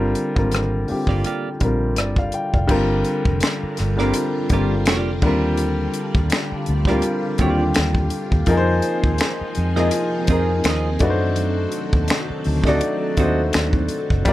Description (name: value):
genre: R&B, neo-soul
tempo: 83 BPM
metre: 4/4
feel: swing 55% on 16ths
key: unclear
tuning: A4 = 437 Hz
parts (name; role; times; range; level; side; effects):
- warm upright piano; accompaniment; 0.0-14.3 s; D3 to G5; -21 LUFS; left 1 dB; none
- vintage muted fingered electric bass; bass; 0.0-14.3 s; F1 to F#2; -22 LUFS; equal; none
- compact cocktail drum kit; drums; 0.2-14.3 s; crash cymbal, finger snaps, hi-hat, kick drum, rim click, snare drum; -21 LUFS; equal; none
- clean electric guitar; second line; 1.1-13.4 s; Bb3 to Eb5; -26 LUFS; right 6 dB; none
- string machine, full ensemble; sustained chords; 2.7-14.3 s; D3 to Bb4; -29 LUFS; equal; phaser, ensemble chorus
room: light reverb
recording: dark, warm production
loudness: -17 LUFS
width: side -15 dB against mid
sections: 0.0-2.7 A section; 2.7-14.3 B section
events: none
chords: 0.0 Gm7; 5.2 Ebmaj9; 8.5 Fm7; 11.0 D7b9